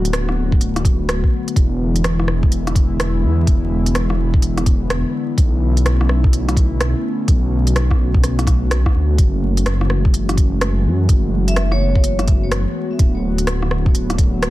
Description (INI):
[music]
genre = future garage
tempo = 126 BPM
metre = 4/4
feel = swing 64% on 16ths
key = F# minor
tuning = A4 = 440 Hz
[part]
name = airy breathy pad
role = sustained chords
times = 0.0-14.5 s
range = D3 to F#4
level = -23 LUFS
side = left 1 dB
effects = chorus, sidechain pumping
[part]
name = dark detuned saw bass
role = bass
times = 0.0-14.5 s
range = D1 to F#2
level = -18 LUFS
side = equal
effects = sidechain pumping
[part]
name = organic electronic drum kit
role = drums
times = 0.1-14.5 s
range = hi-hat, rim click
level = -24 LUFS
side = equal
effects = soft clipping on snare
[part]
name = electronic kick drum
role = drums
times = 0.5-14.3 s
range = none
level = -15 LUFS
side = equal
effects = none
[part]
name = vibraphone with hard mallets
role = melody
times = 11.5-12.2 s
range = C#5 to E5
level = -28 LUFS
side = equal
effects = tape echo
[sound]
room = light reverb, digital ambience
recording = dense, heavily limited modern master, vinyl crackle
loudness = -14 LUFS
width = side -16 dB against mid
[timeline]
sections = 0.0-14.5 A section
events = none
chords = 0.0 D6; 1.6 E7; 5.4 Bm11; 9.2 F#m9; 13.0 D6